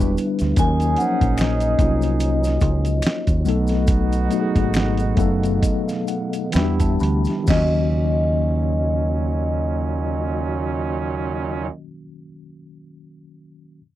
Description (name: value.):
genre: R&B, neo-soul.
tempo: 63-74 BPM.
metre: 4/4.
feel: swing 57% on 16ths.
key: unclear.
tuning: A4 = 440 Hz.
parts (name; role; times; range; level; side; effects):
vibraphone with medium mallets; melody; 0.0-11.7 s; Eb5 to Db6; -27 LUFS; left 1 dB; none.
mellow tine electric piano; accompaniment; 0.0-13.8 s; Eb3 to B5; -24 LUFS; left 2 dB; medium stereo tremolo.
percussive tonewheel organ; sustained chords; 0.0-11.7 s; B2 to E4; -31 LUFS; right 2 dB; chorus vibrato, fast rotary speaker.
bright trombone section; stabs; 0.0-11.7 s; Bb2 to Ab4; -30 LUFS; right 7 dB; none.
deep dub fingered electric bass; bass; 0.0-11.7 s; E1 to E2; -21 LUFS; equal; none.
maracas and finger snaps; percussion; 0.0-7.9 s; none; -38 LUFS; left 4 dB; none.
dusty soul sampler-style drum kit; drums; 0.2-7.7 s; crash cymbal, hi-hat, kick drum, snare drum; -22 LUFS; equal; none.
room: little or no reverb.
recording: dry, close 1970s-style studio recording.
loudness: -18 LUFS.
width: side -14 dB against mid.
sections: 0.0-7.5 A section; 7.5-11.3 B section.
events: slowing down 0.6-7.5; tine electric piano fill 4.7-7.5.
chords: 0.0 Em7; 0.6 Ebm7; 3.5 B7; 6.5 Em7; 7.5 Ebm7.